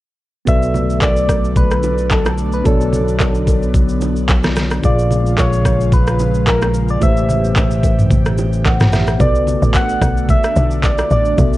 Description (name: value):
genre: amapiano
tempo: 110 BPM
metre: 4/4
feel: swing 55% on 16ths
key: unclear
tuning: A4 = 442 Hz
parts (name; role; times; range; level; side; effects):
- soft struck synth lead; melody; 0.5-11.6 s; A4 to F#5; -20 LUFS; equal; chorus, tape echo
- mellow tine electric piano; accompaniment; 0.5-11.6 s; A#2 to F#5; -22 LUFS; left 1 dB; medium stereo tremolo
- airy breathy pad; sustained chords; 0.8-11.6 s; B2 to G4; -24 LUFS; right 1 dB; chorus, phaser
- fingered electric bass; bass; 0.5-9.2 s; A1 to B1; -18 LUFS; equal; none
- smooth R&B drum kit; drums; 0.5-11.6 s; handclaps, kick drum, rim click, shaker, snare drum, toms; -15 LUFS; equal; overdrive, vintage 12-bit sampler grit
- congas and bongos; percussion; 0.5-11.5 s; none; -26 LUFS; right 4 dB; none
- tight log drum bass; bass; 9.2-11.6 s; A1 to B1; -16 LUFS; equal; none
room: little or no reverb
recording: worn, warbling old tape, cassette tape, warbly pitch drift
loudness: -12 LUFS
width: side -16 dB against mid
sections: 0.5-11.6 A section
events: tine electric piano fill 8.4-9.2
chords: 0.5 Bm9; 4.8 A#m7; 7.0 Am9; 9.2 Bm7